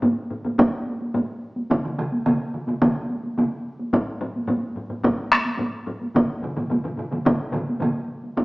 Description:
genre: japanese traditional, taiko drum ensemble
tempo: 108 BPM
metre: 4/4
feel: straight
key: none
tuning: none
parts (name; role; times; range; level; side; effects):
- taiko ensemble; percussion; 0.0-8.4 s; none; -24 LUFS; equal; none
- taiko ensemble; percussion; 0.0-7.9 s; none; -26 LUFS; left 1 dB; none
- solo taiko drums; percussion; 0.6-8.4 s; none; -23 LUFS; equal; none
- taiko ensemble; percussion; 1.7-7.9 s; none; -29 LUFS; right 1 dB; none
room: wet large studio reverb, RT60 1.4 s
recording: band playing live in one room, small speaker sound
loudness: -21 LUFS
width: side -22 dB against mid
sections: 0.0-8.4 A section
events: none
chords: none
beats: 0.03 0.59 1.15 | 1.70 2.26 2.82 3.38 | 3.93 4.49 5.04 5.60 | 6.15 6.71 7.26 7.82 | 8.37

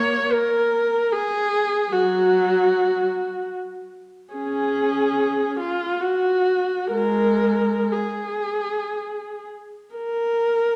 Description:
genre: classical, free, expressive piece for unaccompanied viola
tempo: free time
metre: none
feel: none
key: unclear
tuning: A4 = 440 Hz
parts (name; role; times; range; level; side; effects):
- warm viola; solo; 0.0-10.8 s; F#3 to C#5; -22 LUFS; equal; none
room: wet recital hall reverb, RT60 1.8 s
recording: heard from further back in the room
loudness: -22 LUFS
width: mono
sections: 0.0-9.9 A section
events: none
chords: none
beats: free time

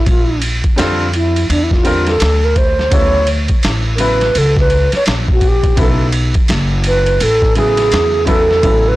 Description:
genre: hip hop, jazz-hop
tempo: 84 BPM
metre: 4/4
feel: swing 61% on 16ths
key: D major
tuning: A4 = 442 Hz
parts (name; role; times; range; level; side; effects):
- wooden-headed alto flute; melody; 0.0-9.0 s; D4 to C#5; -15 LUFS; right 1 dB; slapback echo
- upright bass; bass; 0.0-9.0 s; F#1 to F2; -16 LUFS; equal; tube saturation
- boom bap sampler-style drum kit; drums; 0.1-8.8 s; hi-hat, kick drum, ride cymbal, snare drum; -16 LUFS; equal; none
- warm upright piano; accompaniment; 0.8-9.0 s; C#3 to B4; -19 LUFS; left 1 dB; none
room: small room ambience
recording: blown-out, overdriven recording, overdrive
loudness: -11 LUFS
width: side -17 dB against mid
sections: 0.0-9.0 A section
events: alto flute solo 0.0-9.0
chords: 0.1 Bb; 2.9 Dmaj7; 5.8 Bsus2; 7.9 E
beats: | 0.06 0.78 1.49 2.21 | 2.92 3.63 4.35 5.06 | 5.78 6.49 7.21 7.92 | 8.63

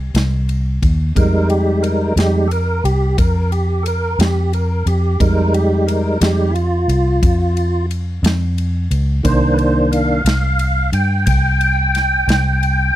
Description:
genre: slow blues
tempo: 59 BPM (dotted quarters)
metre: 12/8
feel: straight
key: unclear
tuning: A4 = 440 Hz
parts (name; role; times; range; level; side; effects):
- vintage muted fingered electric bass; bass; 0.0-12.9 s; C2 to G2; -16 LUFS; equal; none
- natural country drum kit; drums; 0.1-12.8 s; kick drum, ride cymbal, snare drum; -19 LUFS; equal; none
- tonewheel organ; sustained chords; 1.2-13.0 s; Eb3 to G5; -17 LUFS; right 1 dB; slow rotary speaker, chorus vibrato
room: small room ambience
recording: dry, close 1970s-style studio recording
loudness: -14 LUFS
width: side -13 dB against mid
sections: 0.0-13.0 A section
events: tonewheel organ solo 0.0-13.0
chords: 0.0 Cm; 1.2 Fm9; 9.2 Cm9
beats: 0.15 | 1.16 2.17 3.18 4.19 | 5.20 6.21 7.22 8.24 | 9.25 10.26 11.27 12.29

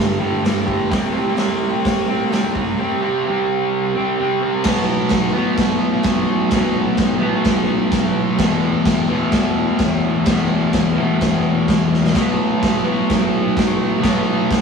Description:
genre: garage rock duo or trio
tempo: 128 BPM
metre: 4/4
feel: straight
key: unclear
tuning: A4 = 440 Hz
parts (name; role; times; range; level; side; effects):
- fuzz guitar; riff; 0.0-14.6 s; E2 to C4; -17 LUFS; equal; distortion
- raw garage drum kit; drums; 0.0-14.6 s; crash cymbal, hi-hat, kick drum, snare drum; -19 LUFS; right 1 dB; none
room: moderate stone room reverb, RT60 0.9 s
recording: rough rehearsal-room recording, tube saturation, small room ambience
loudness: -15 LUFS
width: side -5 dB against mid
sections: 0.0-4.7 A section; 4.7-14.6 B section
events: drum fill 11.9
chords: 0.0 G5; 0.9 C5; 4.7 B5; 8.4 E5; 12.1 B5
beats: 0.45 | 0.91 1.38 1.84 2.31 | 2.78 3.25 3.71 4.18 | 4.65 5.12 5.58 6.05 | 6.52 6.99 7.46 7.92 | 8.39 8.86 9.33 9.80 | 10.27 10.74 11.21 11.68 | 12.15 12.62 13.09 13.55 | 14.03 14.49

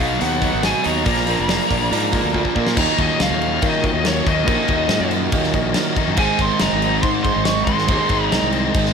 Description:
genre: classic rock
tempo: 141 BPM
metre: 4/4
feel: straight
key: Eb minor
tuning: A4 = 442 Hz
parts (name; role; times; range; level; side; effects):
- bluesy overdriven lead guitar; melody; 0.0-8.5 s; Db5 to Db6; -23 LUFS; equal; distortion
- dark baby grand piano; accompaniment; 0.0-8.9 s; Eb4 to D#5; -29 LUFS; right 5 dB; none
- tonewheel organ; sustained chords; 0.0-8.9 s; D4 to C5; -34 LUFS; equal; none
- distorted electric guitar; riff; 0.0-8.9 s; Eb2 to Eb4; -23 LUFS; left 16 dB; overdrive
- overdriven semi-hollow guitar; riff; 0.0-8.9 s; Eb2 to B3; -23 LUFS; right 13 dB; none
- fuzz fingered electric bass; bass; 0.0-8.9 s; F1 to Eb3; -24 LUFS; left 1 dB; overdrive
- big rock drum kit; drums; 0.0-8.9 s; crash cymbal, hi-hat, kick drum, snare drum; -22 LUFS; equal; none
room: little or no reverb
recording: none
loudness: -16 LUFS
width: side -6 dB against mid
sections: 0.0-2.8 A section; 2.8-8.9 B section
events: drum fill 2.3-2.8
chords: 0.0 B; 1.1 Bb; 2.8 Ebm; 6.2 Ab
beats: 0.20 0.63 | 1.06 1.49 1.92 2.35 | 2.77 3.20 3.63 4.05 | 4.48 4.91 5.33 5.76 | 6.18 6.61 7.04 7.46 | 7.89 8.31 8.74

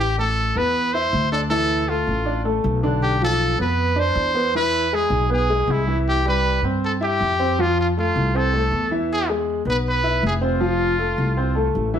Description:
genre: latin, salsa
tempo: 158 BPM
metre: 4/4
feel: straight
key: A minor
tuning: A4 = 440 Hz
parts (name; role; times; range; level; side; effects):
- bright trumpet; melody; 0.0-11.7 s; E4 to C5; -22 LUFS; equal; plate reverb
- upright bass; bass; 0.0-12.0 s; F1 to G2; -23 LUFS; equal; none
- clear baby grand piano; accompaniment; 0.2-12.0 s; D3 to E5; -23 LUFS; equal; none
room: wet studio reverb, RT60 0.8 s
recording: heard from further back in the room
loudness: -18 LUFS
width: side -9 dB against mid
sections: 0.0-12.0 A section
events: none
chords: 0.0 Asus2; 3.0 Bdim; 4.5 E; 6.1 C; 7.6 F; 9.1 E; 10.6 F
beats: | 0.00 0.37 0.75 1.13 | 1.51 1.89 2.27 2.65 | 3.03 3.40 3.78 4.16 | 4.54 4.92 5.30 5.68 | 6.06 6.44 6.82 7.20 | 7.58 7.96 8.34 8.72 | 9.10 9.47 9.86 10.23 | 10.61 10.99 11.37 11.75

